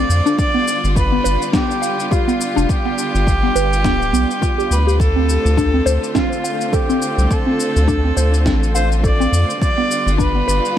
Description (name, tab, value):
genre	organic downtempo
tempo	104 BPM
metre	4/4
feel	swing 57% on 16ths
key	unclear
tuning	A4 = 441 Hz
part	bright kamancheh	melody	0.0-10.8 s	F4 to D5	-21 LUFS	right 1 dB	tape echo
part	rich studio string section	sustained chords	0.0-10.8 s	D3 to F4	-25 LUFS	equal	sidechain pumping
part	mallet-like synth pluck	arpeggios	0.0-10.6 s	B3 to F5	-21 LUFS	equal	chorus, phaser, ping-pong delay
part	round analog bass	bass	0.0-10.6 s	D1 to F2	-16 LUFS	equal	none
part	electronic shaker and snare drum	drums	0.1-10.7 s	none	-25 LUFS	left 2 dB	none
part	electronic kick drum	drums	0.4-10.3 s	none	-20 LUFS	equal	overdrive
room	light reverb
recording	none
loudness	-14 LUFS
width	side -10 dB against mid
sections	0.0-10.8 A section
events	none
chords	0.4 G7; 5.0 Dm7; 9.6 G7